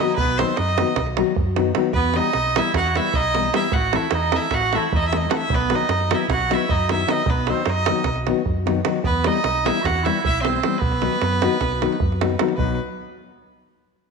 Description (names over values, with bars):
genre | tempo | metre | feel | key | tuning
balkan folk, Balkan wedding band | 305 BPM (eighths) | 9/8 | straight | B phrygian dominant | A4 = 440 Hz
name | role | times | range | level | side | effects
clear violin | melody | 0.0-12.8 s | B4 to F#5 | -24 LUFS | equal | none
clear clarinet | second line | 0.0-12.8 s | B3 to F#4 | -26 LUFS | right 8 dB | none
nylon-string guitar | accompaniment | 0.0-12.8 s | D#3 to A4 | -24 LUFS | left 11 dB | none
davul | percussion | 0.0-12.8 s | none | -24 LUFS | right 6 dB | none
hollow-body short-scale fingered electric bass | bass | 0.2-12.8 s | A1 to F#2 | -25 LUFS | equal | none
room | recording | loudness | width
wet echo chamber reverb, RT60 1.7 s, small room reverb | 1960s-style stereo with parts hard left and right | -18 LUFS | side -4 dB against mid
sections
0.0-12.6 A section; 12.6-14.1 B section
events
none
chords
0.0 B; 2.0 Em; 3.7 Am; 5.5 B; 9.0 Em; 10.8 B